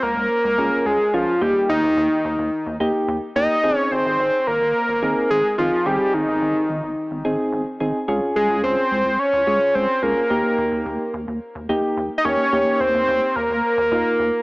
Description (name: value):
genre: synth-pop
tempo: 108 BPM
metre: 4/4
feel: straight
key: Ab major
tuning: A4 = 442 Hz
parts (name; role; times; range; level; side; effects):
- fat analog lead; melody; 0.0-14.4 s; Eb4 to Eb5; -18 LUFS; equal; none
- rubbery square bass; bass; 0.0-14.3 s; Ab1 to Eb2; -30 LUFS; equal; none
- soft electric-piano-like synth keys; accompaniment; 0.6-14.3 s; Bb3 to Ab4; -24 LUFS; equal; chorus
room: moderate plate reverb, RT60 3.0 s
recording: small speaker sound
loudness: -18 LUFS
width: side -25 dB against mid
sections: 0.0-14.4 A section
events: none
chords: 0.0 Db; 1.4 Eb; 3.6 Ab; 8.1 Db; 10.3 Eb